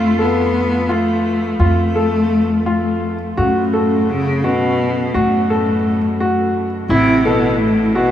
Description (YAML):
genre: contemporary instrumental, chamber music in an uneven meter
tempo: 170 BPM (eighths)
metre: 5/8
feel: straight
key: unclear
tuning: A4 = 439 Hz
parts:
  - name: clear cello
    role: melody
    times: 0.0-8.1 s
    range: A2 to B3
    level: -17 LUFS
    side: left 1 dB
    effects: none
  - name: vibraphone with medium hard mallets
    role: second line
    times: 0.0-8.1 s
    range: C#4 to F4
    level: -24 LUFS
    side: right 1 dB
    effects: none
  - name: clear grand piano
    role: arpeggios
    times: 0.0-8.1 s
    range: E4 to A4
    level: -19 LUFS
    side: left 1 dB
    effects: none
  - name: upright bass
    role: bass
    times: 0.0-8.1 s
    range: A1 to F#2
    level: -23 LUFS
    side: equal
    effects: none
room: wet huge ambient reverb, RT60 7.3 s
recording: in a vast, echoing space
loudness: -14 LUFS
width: side -10 dB against mid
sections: 0.0-3.4 A section; 3.4-8.1 B section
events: none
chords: 0.0 F; 3.4 F#m; 6.9 Am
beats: 0.18 0.53 0.89 1.24 | 1.59 1.95 2.30 2.66 3.02 | 3.38 3.73 4.09 4.44 4.79 | 5.15 5.50 5.85 6.20 6.55 | 6.91 7.26 7.61 7.96